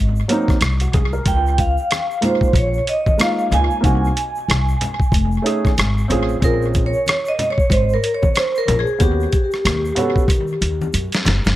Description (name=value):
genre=hip hop, jazz-hop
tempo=93 BPM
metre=4/4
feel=swing 60% on 16ths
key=unclear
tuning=A4 = 440 Hz
part: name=upright bass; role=bass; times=0.0-11.6 s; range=F1 to Eb3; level=-19 LUFS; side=equal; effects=none
part: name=egg shaker and congas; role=percussion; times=0.2-11.6 s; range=none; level=-30 LUFS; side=left 1 dB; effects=tape echo
part: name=dark baby grand piano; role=accompaniment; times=0.3-10.2 s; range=Gb3 to Bb4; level=-21 LUFS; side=right 2 dB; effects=none
part: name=boom bap sampler-style drum kit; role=drums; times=0.3-11.6 s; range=hi-hat, kick drum, rim click, snare drum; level=-19 LUFS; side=equal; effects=none
part: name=vibraphone with medium mallets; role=melody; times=1.3-10.9 s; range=G4 to Ab5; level=-21 LUFS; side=right 1 dB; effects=tape echo
room=light reverb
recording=echo-heavy mix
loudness=-15 LUFS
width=side -15 dB against mid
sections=0.0-11.6 A section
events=drum fill 10.3-11.6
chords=0.0 Ab9; 1.3 Db6; 3.8 Cm7b5; 5.1 F7alt; 6.4 Bbm7; 9.0 Eb7alt